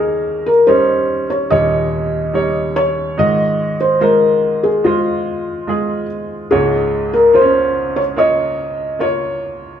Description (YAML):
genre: pop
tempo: 72 BPM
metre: 4/4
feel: straight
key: Ab major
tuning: A4 = 442 Hz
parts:
  - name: felt-muted upright piano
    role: melody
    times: 0.0-9.8 s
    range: F4 to Eb5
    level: -14 LUFS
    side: left 1 dB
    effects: none
  - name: clear grand piano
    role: accompaniment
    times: 0.0-9.8 s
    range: Db2 to Eb5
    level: -18 LUFS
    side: right 1 dB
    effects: none
room: wet stone room reverb, RT60 1.0 s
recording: band playing live in one room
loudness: -13 LUFS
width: side -9 dB against mid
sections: 0.0-9.8 A section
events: none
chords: 0.0 Eb7; 3.2 Ab6; 6.5 Db6